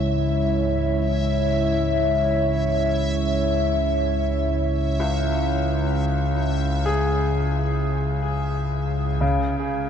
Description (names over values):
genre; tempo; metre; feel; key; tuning
dark ambient drone; free time; none; none; C# minor; A4 = 440 Hz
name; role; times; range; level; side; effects
dark analog pad; sustained chords; 0.0-9.2 s; G#3 to E5; -24 LUFS; equal; wide subtle chorus, shimmer reverb
clear baby grand piano; arpeggios; 0.0-9.9 s; C#2 to G#4; -27 LUFS; left 2 dB; ping-pong delay, shimmer reverb
deep rumbling drone; drone; 0.0-9.9 s; C#2 to C#3; -23 LUFS; equal; built-in reverb
backwards swelling texture; texture; 0.0-9.9 s; E5; -34 LUFS; left 1 dB; built-in reverb, shimmer reverb
room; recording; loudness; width
wet huge ambient reverb, RT60 9.5 s; none; -20 LUFS; side -8 dB against mid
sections
0.0-9.2 A section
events
fade-in on grand piano 0.0-9.2; fade-out on synth texture 0.0-9.2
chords
0.0 C#m